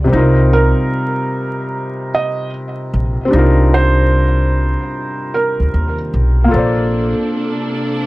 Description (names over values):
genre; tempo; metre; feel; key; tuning
lo-fi hip hop; 75 BPM; 4/4; swing 65% on 16ths; C dorian; A4 = 440 Hz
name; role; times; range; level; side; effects
felt-muted upright piano; accompaniment; 0.0-8.1 s; C3 to D5; -17 LUFS; left 1 dB; cassette tape, low-pass filter
upright bass; bass; 0.0-7.1 s; Bb1 to Eb2; -14 LUFS; equal; none
felt-muted upright piano; melody; 0.5-6.0 s; Bb4 to Eb5; -20 LUFS; right 3 dB; low-pass filter, tape echo
clear studio string section; sustained chords; 6.5-8.1 s; C3 to A4; -22 LUFS; right 1 dB; low-pass filter
room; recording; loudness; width
light reverb; vinyl crackle; -13 LUFS; side -19 dB against mid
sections
0.0-8.1 A section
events
none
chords
0.1 Cm11; 6.5 Bbmaj9